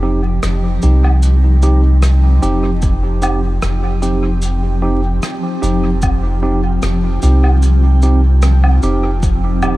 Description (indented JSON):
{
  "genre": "ambient dub",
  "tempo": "75 BPM",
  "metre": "4/4",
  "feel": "swing 54% on 16ths",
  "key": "unclear",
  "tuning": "A4 = 441 Hz",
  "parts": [
    { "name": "granular cloud pad", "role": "sustained chords", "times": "0.0-9.8 s", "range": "F3 to G5", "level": "-21 LUFS", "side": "equal", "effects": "built-in reverb" },
    { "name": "tine electric piano", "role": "stabs", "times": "0.0-9.8 s", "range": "C4 to G4", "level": "-21 LUFS", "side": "right 2 dB", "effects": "dub echo" },
    { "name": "soft dub sub bass", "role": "bass", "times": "0.0-9.8 s", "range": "Eb1 to C2", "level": "-12 LUFS", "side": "equal", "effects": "tube saturation" },
    { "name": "rim click, shaker and woodblock", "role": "drums", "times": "0.4-9.8 s", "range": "none", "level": "-25 LUFS", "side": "equal", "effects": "dub echo" },
    { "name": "electronic kick drum", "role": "drums", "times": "2.8-9.4 s", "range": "none", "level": "-16 LUFS", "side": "equal", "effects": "none" }
  ],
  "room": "studio reverb",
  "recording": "vinyl crackle",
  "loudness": "-11 LUFS",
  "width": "side -18 dB against mid",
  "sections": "0.0-9.8 A section",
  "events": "none",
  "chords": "0.0 Cm/F",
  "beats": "0.43 | 1.23 2.03 2.83 3.63 | 4.43 5.23 6.03 6.83 | 7.63 8.43 9.23"
}